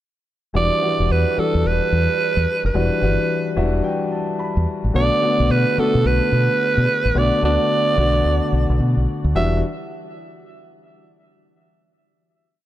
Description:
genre	R&B, new jack swing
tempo	109 BPM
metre	4/4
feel	swing 63% on 16ths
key	E minor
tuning	A4 = 440 Hz
part	warm concert grand piano	accompaniment	0.5-9.6 s	D3 to B5	-22 LUFS	left 4 dB	none
part	deep dub fingered electric bass	bass	0.5-9.6 s	E1 to B2	-19 LUFS	equal	none
part	growling alto saxophone	melody	0.6-9.6 s	A4 to E5	-20 LUFS	right 3 dB	none
room	light reverb, small room ambience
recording	dark, warm production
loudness	-16 LUFS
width	side -13 dB against mid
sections	0.5-9.3 verse; 9.3-11.6 final chord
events	grand piano fill 3.3-4.9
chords	0.5 Em9; 4.9 Bm7; 9.3 Em9

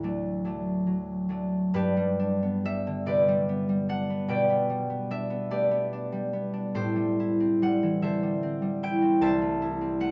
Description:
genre	classical, solo harp piece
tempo	48 BPM (dotted quarters)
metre	6/8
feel	uneven beats, rubato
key	G major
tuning	A4 = 440 Hz
part	concert harp	solo	0.0-10.1 s	C2 to A5	-27 LUFS	equal	none
room	light reverb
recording	dark, warm production, nothing above 7.7 kHz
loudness	-27 LUFS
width	mono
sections	0.0-1.7 A section; 1.7-10.1 B section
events	none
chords	0.0 D; 1.7 G; 4.3 G/B; 6.7 Am7; 9.2 Am/C

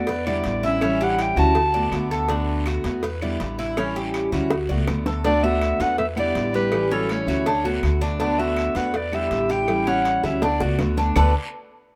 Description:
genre	latin, Cuban son and guajira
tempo	162 BPM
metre	4/4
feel	straight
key	D major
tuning	A4 = 441 Hz
part	clear clarinet	melody	0.0-2.1, 5.3-10.8 s	A4 to A5	-26 LUFS	equal	none
part	nylon-string guitar	second line	0.0-2.1, 5.2-10.8 s	F#3 to F#4	-33 LUFS	equal	none
part	picked steel-string acoustic guitar	accompaniment	0.0-11.3 s	D3 to F#4	-30 LUFS	equal	none
part	Cuban tres	arpeggios	0.0-11.3 s	C#4 to D5	-28 LUFS	equal	none
part	upright bass	bass	0.0-11.3 s	A1 to E2	-28 LUFS	equal	none
part	cowbell and bongos	percussion	0.1-11.2 s	none	-33 LUFS	equal	none
part	guiro	percussion	0.1-11.2 s	none	-42 LUFS	equal	none
part	claves	percussion	0.3-11.2 s	none	-40 LUFS	equal	none
room	wet spring reverb, RT60 1.6 s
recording	none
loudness	-22 LUFS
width	mono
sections	0.0-5.2 A section; 5.2-11.2 B section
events	drum fill 4.5-5.2, 10.2-11.2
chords	0.1 Em7; 0.8 A7; 1.6 D6; 3.0 Em7; 3.8 A7; 4.5 D6; 6.0 Em7; 6.7 A7; 7.5 D6; 8.9 Em7; 9.7 A7; 10.4 D6

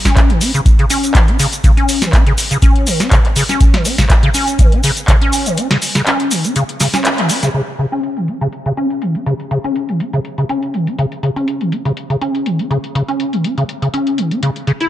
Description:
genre	acid house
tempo	122 BPM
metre	4/4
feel	swing 54% on 16ths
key	unclear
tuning	A4 = 440 Hz
part	acid bass, square	riff	0.1-14.9 s	C#3 to E4	-16 LUFS	equal	ensemble chorus, sidechain pumping, dub echo
part	booming analog drum machine	drums	0.1-14.9 s	handclaps, hi-hat, shaker, snare drum	-18 LUFS	equal	low-pass filter on hats, low-pass filter on perc, low-pass filter on snare
part	electronic kick drum	drums	0.1-5.2 s	none	-11 LUFS	equal	none
room	light reverb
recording	none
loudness	-12 LUFS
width	side -13 dB against mid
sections	0.0-7.5 A section; 7.5-14.9 B section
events	drop 0.0-7.5; break 5.6-7.5; band accent 7.0; filter sweep on drum 7.5-14.9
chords	none

